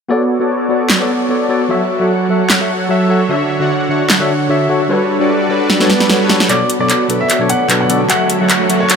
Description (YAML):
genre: future bass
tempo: 150 BPM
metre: 4/4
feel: swing 54% on 16ths, half-time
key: unclear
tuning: A4 = 440 Hz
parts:
  - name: bright tine electric piano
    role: accompaniment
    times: 0.1-8.8 s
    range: B2 to F#5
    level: -18 LUFS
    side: left 3 dB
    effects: dub echo
  - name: soft supersaw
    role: riff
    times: 0.1-9.0 s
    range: D3 to F#5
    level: -15 LUFS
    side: right 1 dB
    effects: low-pass filter, dub echo
  - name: big-room dance drum kit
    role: drums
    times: 0.9-9.0 s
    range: handclaps, hi-hat, snare drum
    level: -17 LUFS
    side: right 1 dB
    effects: small room ambience
  - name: swell and riser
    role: sound effects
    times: 5.9-9.0 s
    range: none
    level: -23 LUFS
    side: right 2 dB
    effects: none
  - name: bright grand piano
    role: melody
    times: 6.5-8.9 s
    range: C#5 to F#5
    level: -18 LUFS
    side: equal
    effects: low-pass filter, ping-pong delay
  - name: shimmering ambient pad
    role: sustained chords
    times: 7.1-9.0 s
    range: D3 to A4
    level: -25 LUFS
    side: right 2 dB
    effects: chorus, built-in reverb
room: moderate shimmer reverb, RT60 6.9 s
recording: none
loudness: -11 LUFS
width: side -6 dB against mid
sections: 0.1-6.5 A section; 6.5-9.0 B section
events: filter sweep on supersaw synth 0.1-6.5, 6.5-9.0; drum fill 5.7-6.5, 6.5-9.0; swell 5.9-6.5; build-up 6.5-9.0; filter sweep on grand piano 6.5-9.0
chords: 0.1 Bm7; 1.7 F#m7; 3.3 Dmaj7; 4.9 Gmaj9#11; 6.5 Bm7; 8.1 F#m7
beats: | 0.10 0.50 0.90 1.30 | 1.70 2.10 2.50 2.90 | 3.30 3.70 4.10 4.50 | 4.90 5.30 5.70 6.10 | 6.50 6.90 7.30 7.70 | 8.10 8.50 8.90